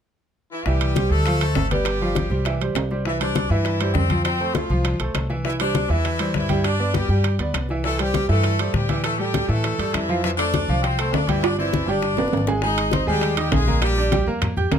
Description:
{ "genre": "latin, salsa", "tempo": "200 BPM", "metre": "4/4", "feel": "straight", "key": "C major", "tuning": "A4 = 440 Hz", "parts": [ { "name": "brilliant horn section", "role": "melody", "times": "0.5-14.2 s", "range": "E3 to Eb5", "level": "-25 LUFS", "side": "left 2 dB", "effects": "none" }, { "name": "bright concert grand piano", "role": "accompaniment", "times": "0.7-14.8 s", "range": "E3 to G6", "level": "-25 LUFS", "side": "right 2 dB", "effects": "none" }, { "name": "upright bass", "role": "bass", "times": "0.7-14.8 s", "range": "F1 to A2", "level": "-23 LUFS", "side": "equal", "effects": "none" }, { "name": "bongos", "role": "percussion", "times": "0.7-14.8 s", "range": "none", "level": "-31 LUFS", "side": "left 7 dB", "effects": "none" }, { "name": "congas", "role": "percussion", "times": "0.7-14.8 s", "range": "none", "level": "-27 LUFS", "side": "left 3 dB", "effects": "none" }, { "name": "timbales", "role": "percussion", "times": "0.8-14.8 s", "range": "none", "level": "-27 LUFS", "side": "right 8 dB", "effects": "none" } ], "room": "light reverb", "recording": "close, detailed microphones", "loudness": "-19 LUFS", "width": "side -8 dB against mid", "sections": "0.7-3.1 A section; 3.1-12.6 B section; 12.6-14.8 C section", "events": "drum fill 11.4-12.6", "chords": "0.0 N.C.; 0.7 C; 1.3 Dm7; 1.9 G7; 2.5 C; 4.3 F; 5.5 Cadd9; 6.6 G; 7.8 C; 9.0 A5; 10.2 Fadd9; 11.4 Gsus4; 12.0 G; 12.6 Abmaj7; 13.8 Bb6", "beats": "0.06 0.36 | 0.66 0.96 1.26 1.56 | 1.86 2.16 2.46 2.76 | 3.06 3.36 3.65 3.95 | 4.25 4.55 4.85 5.15 | 5.45 5.75 6.05 6.35 | 6.65 6.95 7.25 7.54 | 7.84 8.14 8.44 8.74 | 9.04 9.34 9.64 9.94 | 10.24 10.54 10.84 11.13 | 11.43 11.73 12.03 12.33 | 12.63 12.93 13.23 13.52 | 13.82 14.12 14.42 14.72" }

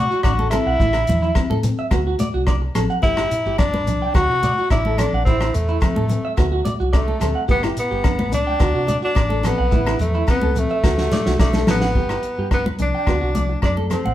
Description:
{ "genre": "highlife guitar band", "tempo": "108 BPM", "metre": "4/4", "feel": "straight", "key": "unclear", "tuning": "A4 = 439 Hz", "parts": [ { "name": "breathy tenor saxophone", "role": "melody", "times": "0.0-14.1 s", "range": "A3 to F#4", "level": "-22 LUFS", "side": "left 1 dB", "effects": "none" }, { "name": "flamenco guitar", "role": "accompaniment", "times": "0.0-14.0 s", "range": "A3 to E4", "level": "-29 LUFS", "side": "left 4 dB", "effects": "none" }, { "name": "electric guitar at the edge of break-up", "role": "arpeggios", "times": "0.0-14.1 s", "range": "E4 to G5", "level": "-25 LUFS", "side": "right 3 dB", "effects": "none" }, { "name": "hollow-body short-scale fingered electric bass", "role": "bass", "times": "0.0-14.1 s", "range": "G1 to C3", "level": "-23 LUFS", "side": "equal", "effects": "none" }, { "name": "shekere", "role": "percussion", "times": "0.1-11.8 s", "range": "none", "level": "-29 LUFS", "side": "right 1 dB", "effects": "none" }, { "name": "warm soul drum kit", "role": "drums", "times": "0.2-14.0 s", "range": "hi-hat, kick drum, rim click, snare drum", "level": "-20 LUFS", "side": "equal", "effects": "none" }, { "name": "agogo bells", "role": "percussion", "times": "0.2-14.0 s", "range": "none", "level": "-33 LUFS", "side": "left 2 dB", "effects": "none" }, { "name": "congas", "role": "percussion", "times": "0.4-14.1 s", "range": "none", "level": "-28 LUFS", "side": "equal", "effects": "none" } ], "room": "wet studio reverb, RT60 0.8 s", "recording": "band playing live in one room", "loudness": "-16 LUFS", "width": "side -13 dB against mid", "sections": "0.0-11.9 A section; 11.9-14.1 B section", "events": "drum fill 10.8-11.9", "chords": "0.0 D; 0.8 Am; 1.9 D; 3.0 G5; 4.1 D; 5.3 Am; 6.4 D; 7.5 G; 8.6 D; 9.7 Am; 10.8 D; 11.9 G; 13.1 D", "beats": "0.25 | 0.80 1.36 1.92 2.47 | 3.03 3.59 4.15 4.70 | 5.26 5.82 6.37 6.93 | 7.49 8.04 8.60 9.16 | 9.72 10.27 10.83 11.39 | 11.95 12.50 13.06 13.62" }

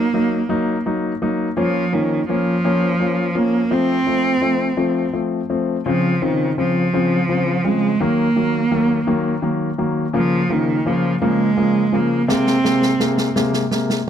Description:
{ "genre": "six-eight pop ballad", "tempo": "56 BPM (dotted quarters)", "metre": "6/8", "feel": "straight", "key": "unclear", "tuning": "A4 = 441 Hz", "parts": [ { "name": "clear cello", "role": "melody", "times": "0.0-13.3 s", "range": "Eb3 to C4", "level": "-19 LUFS", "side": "right 3 dB", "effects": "none" }, { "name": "clear grand piano", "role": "accompaniment", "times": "0.0-14.0 s", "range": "C3 to Eb4", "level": "-19 LUFS", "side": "left 3 dB", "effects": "none" }, { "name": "snare drum", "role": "drums", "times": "12.3-14.1 s", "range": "none", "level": "-23 LUFS", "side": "right 2 dB", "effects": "none" } ], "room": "small room ambience", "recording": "dry, close 1970s-style studio recording", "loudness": "-16 LUFS", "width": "side -9 dB against mid", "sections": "0.0-14.1 A section", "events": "drum fill 12.3-14.1", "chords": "0.0 Ebm; 1.6 Bbm; 3.7 F; 5.9 Dbmaj7; 8.0 Ebm; 10.1 Bbm; 12.3 Abadd9", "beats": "0.49 | 1.56 2.63 | 3.71 4.78 | 5.85 6.92 | 8.00 9.07 | 10.14 11.21 | 12.29 13.36" }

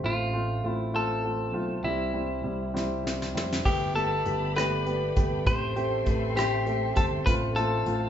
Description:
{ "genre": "six-eight pop ballad", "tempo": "66 BPM (dotted quarters)", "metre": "6/8", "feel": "straight", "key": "unclear", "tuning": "A4 = 441 Hz", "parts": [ { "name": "warm baby grand piano", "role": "accompaniment", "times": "0.0-8.1 s", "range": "G3 to G4", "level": "-30 LUFS", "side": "equal", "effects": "none" }, { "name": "sustaining fretless electric bass", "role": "bass", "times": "0.0-8.1 s", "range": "F1 to C2", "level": "-32 LUFS", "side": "right 1 dB", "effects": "none" }, { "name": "clean electric guitar", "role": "melody", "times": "0.1-8.1 s", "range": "E4 to C5", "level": "-30 LUFS", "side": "left 1 dB", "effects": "none" }, { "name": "soft brush drum kit", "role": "drums", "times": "2.8-8.0 s", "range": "crash cymbal, hi-hat, kick drum, rim click, snare drum", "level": "-29 LUFS", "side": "equal", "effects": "none" }, { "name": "muted studio string section", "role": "sustained chords", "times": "3.6-8.1 s", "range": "C4 to C6", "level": "-37 LUFS", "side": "left 2 dB", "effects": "none" } ], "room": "moderate large studio reverb, RT60 0.9 s", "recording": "band playing live in one room, nothing above 7.8 kHz", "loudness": "-25 LUFS", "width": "side -9 dB against mid", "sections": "0.0-3.7 A section; 3.7-8.1 B section", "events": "drum fill 2.7-3.7", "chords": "0.0 F/A; 1.8 C; 3.7 Gadd9; 5.5 Am7; 7.3 F/A", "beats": "| 0.04 0.94 | 1.84 2.75 | 3.65 4.56 | 5.47 6.37 | 7.27" }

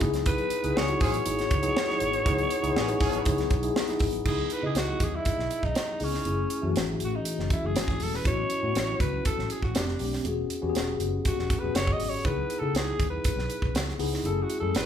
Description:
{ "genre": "polished 1980s jazz-funk pop", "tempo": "120 BPM", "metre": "4/4", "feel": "straight", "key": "C# minor", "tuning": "A4 = 440 Hz", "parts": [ { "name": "mellow tine electric piano", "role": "accompaniment", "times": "0.0-14.9 s", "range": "E3 to D#5", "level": "-30 LUFS", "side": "left 4 dB", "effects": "medium stereo tremolo" }, { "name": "vintage muted fingered electric bass", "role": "bass", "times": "0.0-14.9 s", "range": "E1 to C#3", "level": "-32 LUFS", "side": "right 1 dB", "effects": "none" }, { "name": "crisp fusion drum kit", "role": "drums", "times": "0.0-14.9 s", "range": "crash cymbal, hi-hat, kick drum, snare drum", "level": "-29 LUFS", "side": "right 1 dB", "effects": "none" }, { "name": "growling alto saxophone", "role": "melody", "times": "0.3-14.9 s", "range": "C#4 to D#5", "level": "-31 LUFS", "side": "right 1 dB", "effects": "none" }, { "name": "warm horn section", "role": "second line", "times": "0.8-3.2 s", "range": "E3 to G#4", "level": "-34 LUFS", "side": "right 3 dB", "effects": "none" } ], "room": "moderate large studio reverb, RT60 0.8 s", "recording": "band playing live in one room", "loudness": "-25 LUFS", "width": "side -9 dB against mid", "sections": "0.0-4.3 A section; 4.3-14.9 B section", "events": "alto saxophone solo 4.3-14.9", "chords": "0.0 C#m7; 4.3 C#m9; 6.3 F#m9; 8.3 A6; 9.8 F69; 10.3 E69; 12.3 C#m9; 14.3 F#m9", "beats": "| 0.26 0.76 1.26 1.76 | 2.26 2.76 3.26 3.76 | 4.26 4.76 5.26 5.76 | 6.26 6.76 7.26 7.76 | 8.26 8.76 9.26 9.76 | 10.26 10.76 11.26 11.75 | 12.25 12.75 13.25 13.75 | 14.25 14.75" }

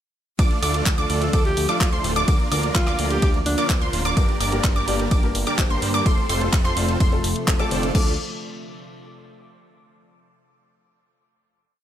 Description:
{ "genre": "EDM, festival progressive house", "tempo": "127 BPM", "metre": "4/4", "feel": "straight", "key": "D minor", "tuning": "A4 = 440 Hz", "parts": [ { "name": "lush unison pad", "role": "sustained chords", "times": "1.0-8.2 s", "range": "C3 to Bb3", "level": "-32 LUFS", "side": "equal", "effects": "chorus, sidechain pumping" }, { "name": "wide unison pluck", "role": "arpeggios", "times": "0.4-8.1 s", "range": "C6 to D6", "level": "-28 LUFS", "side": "right 1 dB", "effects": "sidechain pumping, dub echo" }, { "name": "dense compressed supersaw", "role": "riff", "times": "0.4-8.1 s", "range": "A3 to D5", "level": "-28 LUFS", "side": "right 2 dB", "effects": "cassette tape, sidechain pumping, dub echo" }, { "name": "fat analog bass", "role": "bass", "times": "0.4-8.2 s", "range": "D1 to G2", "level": "-26 LUFS", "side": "equal", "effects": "sidechain pumping" }, { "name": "electronic kick drum", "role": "drums", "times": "0.4-8.0 s", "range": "none", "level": "-20 LUFS", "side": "equal", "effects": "none" }, { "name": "house drum kit", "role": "drums", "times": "0.4-8.0 s", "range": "crash cymbal, handclaps, hi-hat, ride cymbal", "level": "-28 LUFS", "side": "equal", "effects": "none" }, { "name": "clear alto saxophone", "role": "melody", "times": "1.2-3.8 s", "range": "D4 to A4", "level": "-28 LUFS", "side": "equal", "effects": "dub echo" }, { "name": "felt-muted upright piano", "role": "accompaniment", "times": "4.2-8.1 s", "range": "G2 to D5", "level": "-30 LUFS", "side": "left 4 dB", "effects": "sidechain pumping, dub echo" } ], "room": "light reverb, digital ambience", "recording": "none", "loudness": "-18 LUFS", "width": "side -10 dB against mid", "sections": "0.4-7.9 drop; 7.9-9.8 final chord", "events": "drop 0.4-7.9", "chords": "0.4 Dm; 2.3 Bb/D; 4.2 Gm; 6.1 F; 7.9 Dm", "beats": "| 0.39 0.86 1.33 1.81 | 2.28 2.75 3.22 3.70 | 4.17 4.64 5.11 5.59 | 6.06 6.53 7.00 7.48 | 7.95" }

